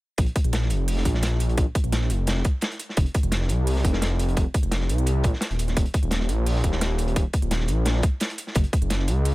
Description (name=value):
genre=liquid drum and bass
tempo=172 BPM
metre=4/4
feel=straight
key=unclear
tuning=A4 = 440 Hz
part: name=swelling detuned saw bass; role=bass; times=0.2-9.3 s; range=Eb1 to Db2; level=-23 LUFS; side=equal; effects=none
part: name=crunchy breakbeat drum kit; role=drums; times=0.2-9.3 s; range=hi-hat, snare drum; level=-30 LUFS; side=equal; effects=high-pass filter on hats, high-pass filter on snare, high-pass filter on room
part: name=electronic hi-hat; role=drums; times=0.2-9.3 s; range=none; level=-36 LUFS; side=right 3 dB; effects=none
part: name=electronic kick drum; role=drums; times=0.2-8.8 s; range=none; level=-22 LUFS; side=equal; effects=overdrive
room=little or no reverb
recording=none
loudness=-21 LUFS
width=side -19 dB against mid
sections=0.2-9.3 A section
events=none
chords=none